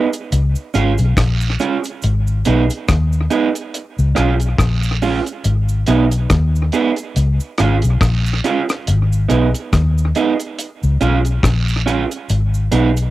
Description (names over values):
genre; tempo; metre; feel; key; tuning
roots reggae; 70 BPM; 4/4; swing 57% on 16ths; G# dorian; A4 = 440 Hz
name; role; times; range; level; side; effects
electric guitar at the edge of break-up; accompaniment; 0.0-12.9 s; B3 to G#4; -19 LUFS; right 5 dB; dub echo
deep reggae drum kit; drums; 0.1-13.1 s; hi-hat, kick drum, rim click; -20 LUFS; left 1 dB; cassette tape, analog delay
cabasa and guiro; percussion; 0.1-13.1 s; none; -30 LUFS; right 6 dB; none
vintage muted fingered electric bass; bass; 0.3-13.1 s; G#1 to D#2; -15 LUFS; left 1 dB; none
room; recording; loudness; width
light reverb; home recording on cassette; -14 LUFS; side -16 dB against mid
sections
0.0-13.1 A section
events
none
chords
0.3 C#; 2.0 G#m; 3.7 C#; 5.4 G#m; 7.2 C#; 8.9 G#m; 10.6 C#; 12.3 G#m